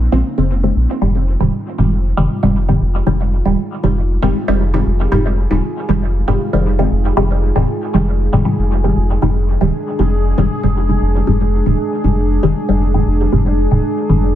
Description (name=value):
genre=dub techno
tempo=117 BPM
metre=4/4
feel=straight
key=unclear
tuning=A4 = 443 Hz
part: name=warbly tape-like pad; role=sustained chords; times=0.0-14.3 s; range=Ab3 to Ab4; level=-23 LUFS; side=equal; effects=chorus, built-in reverb
part: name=round analog bass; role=bass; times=0.0-14.3 s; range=Eb1 to Bb1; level=-16 LUFS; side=equal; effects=none
part: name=filtered dub chord stab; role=stabs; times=0.1-14.2 s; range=Ab2 to C4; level=-16 LUFS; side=equal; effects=phaser, dub echo
part: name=bubbling stepped-filter texture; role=texture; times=1.0-14.3 s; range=Ab4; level=-28 LUFS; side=right 3 dB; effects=chorus, built-in reverb
room=light reverb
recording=dense, heavily limited modern master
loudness=-13 LUFS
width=side -12 dB against mid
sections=0.0-14.3 A section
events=filter sweep on synth stab 0.0-14.3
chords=0.0 Bbm7; 1.0 Fm7